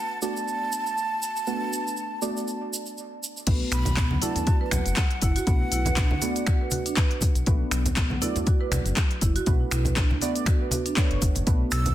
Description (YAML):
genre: afro house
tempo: 120 BPM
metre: 4/4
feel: swing 56% on 16ths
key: B minor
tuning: A4 = 441 Hz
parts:
  - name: breathy jazz flute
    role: melody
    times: 0.0-7.2, 11.7-11.9 s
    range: F#5 to E6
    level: -31 LUFS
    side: right 1 dB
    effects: dub echo
  - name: deep mellow chord stab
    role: stabs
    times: 0.0-11.9 s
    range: A3 to D5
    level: -33 LUFS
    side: right 3 dB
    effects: chorus, sidechain pumping, dub echo
  - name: cabasa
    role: percussion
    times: 0.2-11.9 s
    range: none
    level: -35 LUFS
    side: right 3 dB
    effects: none
  - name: marimba with medium mallets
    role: arpeggios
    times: 3.5-11.6 s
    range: F#3 to B4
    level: -31 LUFS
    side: right 2 dB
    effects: sidechain pumping, dub echo
  - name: dark detuned saw bass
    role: bass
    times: 3.5-11.9 s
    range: F#1 to D2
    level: -27 LUFS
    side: left 1 dB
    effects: sidechain pumping
  - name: afro-pop drum kit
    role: drums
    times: 3.5-11.9 s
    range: crash cymbal, finger snaps, handclaps, hi-hat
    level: -30 LUFS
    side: left 1 dB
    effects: none
  - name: electronic kick drum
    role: drums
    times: 3.5-11.6 s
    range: none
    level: -23 LUFS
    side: equal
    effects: overdrive
  - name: congas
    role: percussion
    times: 3.9-11.9 s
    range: none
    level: -31 LUFS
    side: right 1 dB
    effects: none
room: light reverb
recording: dense, heavily limited modern master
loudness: -22 LUFS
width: side -13 dB against mid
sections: 0.0-3.5 A section; 3.5-11.9 B section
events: drop 3.5-11.9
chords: 0.0 Bm7